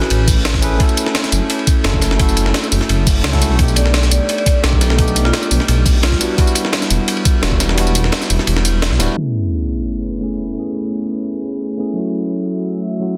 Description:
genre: liquid drum and bass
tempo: 172 BPM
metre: 4/4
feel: straight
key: A major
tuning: A4 = 437 Hz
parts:
  - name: vibraphone with medium mallets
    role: melody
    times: 0.0-0.2, 3.8-6.6 s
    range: F4 to D5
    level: -28 LUFS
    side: equal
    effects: tape echo
  - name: bell-like tine electric piano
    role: accompaniment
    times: 0.0-13.2 s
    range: F#3 to B4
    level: -23 LUFS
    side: equal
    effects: tape echo
  - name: breakbeat sampler-style drum kit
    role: drums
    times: 0.0-9.1 s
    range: hi-hat, snare drum, tambourine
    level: -22 LUFS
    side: equal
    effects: none
  - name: crunchy breakbeat drum kit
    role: drums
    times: 0.0-9.1 s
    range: hi-hat, ride cymbal, snare drum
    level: -27 LUFS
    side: equal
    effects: high-pass filter on cymbals, high-pass filter on hats, high-pass filter on snare, high-pass filter on room
  - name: dark detuned saw bass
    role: bass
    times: 0.1-9.1 s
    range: D1 to C#2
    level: -18 LUFS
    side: equal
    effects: tube saturation
  - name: electronic kick drum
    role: drums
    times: 0.3-7.6 s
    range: none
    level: -18 LUFS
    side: equal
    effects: overdrive
  - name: airy breathy pad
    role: sustained chords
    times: 9.7-13.2 s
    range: A3 to E5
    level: -32 LUFS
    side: equal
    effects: chorus
  - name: sub drop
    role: sound effects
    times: 9.2-10.6 s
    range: none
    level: -25 LUFS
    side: equal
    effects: none
room: light reverb, studio reverb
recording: dense, heavily limited modern master, low-pass filter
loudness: -16 LUFS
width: mono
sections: 0.0-9.2 A section; 9.2-13.2 B section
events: drop 0.0-9.2; kick drops out 7.8-9.2; impact 9.2-10.6; filter sweep on analog synth pad 9.2-13.2; filter sweep 9.2-13.2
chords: 0.0 Amaj9; 0.8 F#m7; 3.6 B7alt; 6.2 Em9; 9.2 Amaj9; 12.0 F#m7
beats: 0.10 0.45 | 0.80 1.15 1.50 1.85 | 2.19 2.54 2.89 3.24 | 3.59 3.94 4.29 4.64 | 4.99 5.33 5.68 6.03 | 6.38 6.73 7.08 7.43 | 7.78 8.12 8.47 8.82 | 9.17 9.52 9.87 10.22 | 10.57 10.92 11.27 11.61 | 11.96 12.31 12.66 13.01

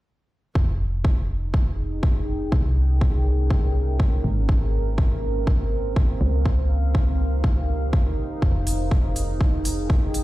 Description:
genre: piano house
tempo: 122 BPM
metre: 4/4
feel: swing 57% on 16ths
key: F minor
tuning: A4 = 438 Hz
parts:
  - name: solid FM bass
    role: bass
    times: 0.6-10.2 s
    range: F1 to Db2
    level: -23 LUFS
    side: equal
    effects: sidechain pumping
  - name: electronic kick drum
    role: drums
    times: 0.6-10.0 s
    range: none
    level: -21 LUFS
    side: equal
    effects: none
  - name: deep dark ambient pad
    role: texture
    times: 1.3-10.2 s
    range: C4 to G5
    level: -30 LUFS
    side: right 1 dB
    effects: chorus, built-in reverb, sidechain pumping
  - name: electronic hi-hat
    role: drums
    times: 8.7-10.2 s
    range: none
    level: -31 LUFS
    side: equal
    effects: none
room: little or no reverb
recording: played on a big sound system in a bare room, stone room reverb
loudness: -20 LUFS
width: side -17 dB against mid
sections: 0.6-10.2 A section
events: filter sweep on FM bass 0.6-10.2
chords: 0.6 Fm11; 2.5 C7b9b13; 4.2 Ab69; 6.2 Dbmaj9#11; 8.4 Fm11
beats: | 0.55 1.04 1.54 2.03 | 2.52 3.01 3.50 4.00 | 4.49 4.98 5.47 5.96 | 6.46 6.95 7.44 7.93 | 8.42 8.91 9.41 9.90

